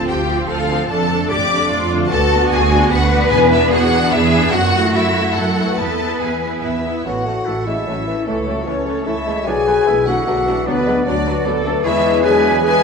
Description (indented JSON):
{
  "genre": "classical",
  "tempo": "149 BPM",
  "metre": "3/4",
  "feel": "rubato",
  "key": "A major",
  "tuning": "A4 = 440 Hz",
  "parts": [
    { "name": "rich studio violin section", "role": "melody", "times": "0.0-12.8 s", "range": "A4 to D6", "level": "-22 LUFS", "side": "left 2 dB", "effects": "none" },
    { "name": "warm symphonic violin section", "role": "second line", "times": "0.0-12.8 s", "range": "A3 to D5", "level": "-24 LUFS", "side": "left 2 dB", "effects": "none" },
    { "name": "rich symphonic viola section", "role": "accompaniment", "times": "0.0-12.8 s", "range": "E3 to E4", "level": "-24 LUFS", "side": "right 2 dB", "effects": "none" },
    { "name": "concert harp", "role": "arpeggios", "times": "0.0-12.8 s", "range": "E2 to D5", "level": "-24 LUFS", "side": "left 8 dB", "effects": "none" },
    { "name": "rich symphonic double bass section", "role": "bass", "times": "0.0-12.8 s", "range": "A1 to F#2", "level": "-21 LUFS", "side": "right 3 dB", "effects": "none" },
    { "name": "warm symphonic cello section", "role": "bass", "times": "0.0-12.8 s", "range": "C#4 to B4", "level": "-23 LUFS", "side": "right 2 dB", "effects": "none" },
    { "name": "timpani", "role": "percussion", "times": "3.3-3.9 s", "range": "E2", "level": "-28 LUFS", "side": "left 1 dB", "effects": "none" },
    { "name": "clear clarinet", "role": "second line", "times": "6.6-12.8 s", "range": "A3 to G#4", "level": "-25 LUFS", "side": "left 1 dB", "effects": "none" },
    { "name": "mellow hollow silver concert flute", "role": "second line", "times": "6.6-12.8 s", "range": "A4 to G#5", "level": "-24 LUFS", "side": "equal", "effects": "none" },
    { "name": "dark French horn section", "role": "sustained chords", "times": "6.6-12.8 s", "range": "A3 to G#4", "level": "-21 LUFS", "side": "left 4 dB", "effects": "none" },
    { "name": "warm oboe", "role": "second line", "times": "7.1-12.8 s", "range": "A4 to E5", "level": "-28 LUFS", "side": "right 2 dB", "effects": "none" },
    { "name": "dark bassoon", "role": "accompaniment", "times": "7.1-12.8 s", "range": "D3 to B3", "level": "-25 LUFS", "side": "right 1 dB", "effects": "none" }
  ],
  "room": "moderate scoring stage reverb, RT60 1.8 s",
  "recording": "none",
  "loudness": "-14 LUFS",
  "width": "side -5 dB against mid",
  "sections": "0.0-7.1 A section; 7.1-12.8 B section",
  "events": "none",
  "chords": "0.0 Dm7; 0.9 Dm/F; 2.1 Bm7/D; 3.3 E7; 4.5 F#m7; 5.8 E; 7.1 A; 8.3 A/C#; 9.5 Bm7; 10.7 Bm/D; 11.9 E7"
}